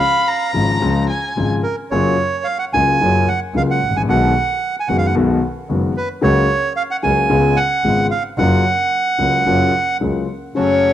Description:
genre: tango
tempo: 111 BPM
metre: 4/4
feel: rubato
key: F# major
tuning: A4 = 440 Hz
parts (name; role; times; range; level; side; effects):
- bandoneon; melody; 0.0-10.0 s; A#4 to G#5; -18 LUFS; right 4 dB; cassette tape
- warm violin; second line; 0.0-1.5, 10.6-10.9 s; C#5 to B5; -18 LUFS; left 3 dB; cassette tape
- warm concert grand piano; accompaniment; 0.5-10.9 s; F#1 to F#4; -18 LUFS; left 3 dB; cassette tape
- clear double bass; bass; 0.5-10.9 s; F#1 to C#2; -22 LUFS; right 1 dB; none
- bandoneon; stabs; 10.6-10.9 s; C#4 to A4; -25 LUFS; right 5 dB; cassette tape
room: moderate spring reverb, RT60 2.1 s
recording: home recording on cassette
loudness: -14 LUFS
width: side -11 dB against mid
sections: 0.0-10.6 A section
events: none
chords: 0.0 C#; 1.9 F#maj7; 4.1 B6; 6.2 F#/C#; 7.3 C#7; 8.4 F#maj7

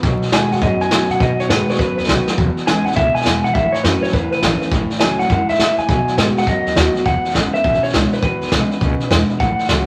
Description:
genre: rockabilly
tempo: 205 BPM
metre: 4/4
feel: swing 64% on 8ths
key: E major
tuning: A4 = 441 Hz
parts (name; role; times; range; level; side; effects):
- picked steel-string acoustic guitar; accompaniment; 0.0-9.9 s; E2 to F#4; -25 LUFS; equal; none
- electric guitar through a small old amp; riff; 0.0-9.9 s; E2 to G#3; -25 LUFS; equal; none
- upright bass; bass; 0.0-9.8 s; E1 to B2; -25 LUFS; equal; none
- vintage brush drum kit; drums; 0.0-9.8 s; hi-hat, kick drum, snare drum; -21 LUFS; equal; none
- electric guitar through a small old amp; melody; 0.3-9.7 s; B4 to G#5; -22 LUFS; equal; spring reverb
room: moderate studio ambience, RT60 0.5 s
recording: vinyl crackle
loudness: -16 LUFS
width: mono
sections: 0.0-7.1 A section; 7.1-9.9 B section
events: drum fill 2.2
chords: 0.0 B7; 2.4 E; 3.5 A; 5.9 B7; 7.1 E

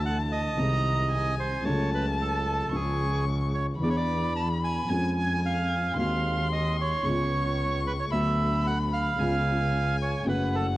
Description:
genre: tango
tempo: 112 BPM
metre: 4/4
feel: rubato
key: unclear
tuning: A4 = 441 Hz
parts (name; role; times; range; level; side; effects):
- warm violin; second line; 0.0-10.8 s; F#5 to C#6; -33 LUFS; left 5 dB; cassette tape, tape echo
- dark upright piano; accompaniment; 0.0-10.8 s; B#1 to A4; -29 LUFS; equal; cassette tape
- warm double bass; bass; 0.0-10.8 s; F#1 to E#2; -30 LUFS; equal; tube saturation
- bandoneon; melody; 0.1-10.7 s; G#4 to A5; -30 LUFS; right 4 dB; cassette tape
room: light reverb, small room ambience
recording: home recording on cassette, vinyl crackle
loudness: -24 LUFS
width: side -16 dB against mid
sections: 0.0-10.8 A section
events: none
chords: 0.0 Dadd9; 0.6 G#/B#; 1.7 F#m/C#; 2.7 C#; 3.8 E7; 4.9 C#/E#; 6.0 G#7/D#; 7.0 C#7; 8.1 Bm/D; 9.2 C#7; 10.3 F#m

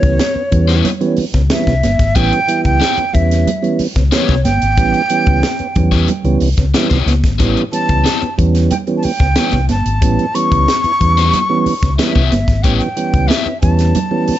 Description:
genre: funk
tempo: 92 BPM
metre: 4/4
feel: straight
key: A mixolydian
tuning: A4 = 440 Hz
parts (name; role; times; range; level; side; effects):
- breathy hollow jazz flute; melody; 0.0-14.4 s; C#5 to C#6; -18 LUFS; equal; none
- mellow tonewheel organ; stabs; 0.0-14.4 s; E3 to E4; -18 LUFS; right 4 dB; slow rotary speaker
- hollow-body short-scale fingered electric bass; bass; 0.0-14.3 s; G1 to E2; -15 LUFS; left 1 dB; none
- crisp fusion drum kit; drums; 0.0-14.4 s; hi-hat, kick drum, snare drum; -18 LUFS; left 1 dB; none
- congas; percussion; 0.2-14.4 s; none; -22 LUFS; right 4 dB; none
- crunchy overdriven guitar; accompaniment; 0.7-13.5 s; B3 to E5; -20 LUFS; left 10 dB; none
room: light reverb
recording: nothing above 7.7 kHz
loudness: -12 LUFS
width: side -12 dB against mid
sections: 0.0-14.4 A section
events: none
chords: 0.0 A9 (rootless)

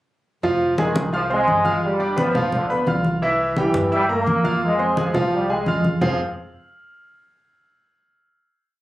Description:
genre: latin, salsa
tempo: 172 BPM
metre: 4/4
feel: straight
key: F minor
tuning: A4 = 440 Hz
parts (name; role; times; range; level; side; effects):
- bright concert grand piano; accompaniment; 0.4-6.2 s; E3 to F6; -22 LUFS; right 1 dB; none
- upright bass; bass; 0.4-6.2 s; F1 to G2; -28 LUFS; equal; none
- congas; percussion; 0.4-6.1 s; none; -24 LUFS; left 1 dB; none
- warm trombone section; melody; 0.8-6.2 s; D3 to Bb3; -22 LUFS; equal; none
room: moderate studio reverb, RT60 0.7 s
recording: recorded on a phone in the room, club reverb, compression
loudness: -18 LUFS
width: side -16 dB against mid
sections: 0.4-6.0 A section; 6.0-7.4 final chord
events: none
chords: 0.4 Fm7; 1.8 G7; 3.2 C7; 4.6 Fm; 6.0 F5

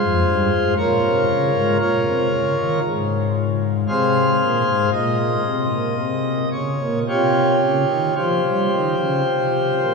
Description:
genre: classical, chorale-style piece for pipe organ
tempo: 54-59 BPM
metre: 4/4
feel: straight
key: F minor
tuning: A4 = 440 Hz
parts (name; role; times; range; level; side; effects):
- pipe organ, principal chorus; solo; 0.0-9.9 s; F2 to F5; -17 LUFS; equal; none
room: wet cathedral reverb, RT60 6.7 s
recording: heard from further back in the room, small room ambience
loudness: -17 LUFS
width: side -4 dB against mid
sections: 0.0-9.9 A section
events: none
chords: 0.0 Fm; 0.8 Bbm; 2.8 Fm/Ab; 4.9 Bbmadd11; 7.1 Csus4; 9.3 C5

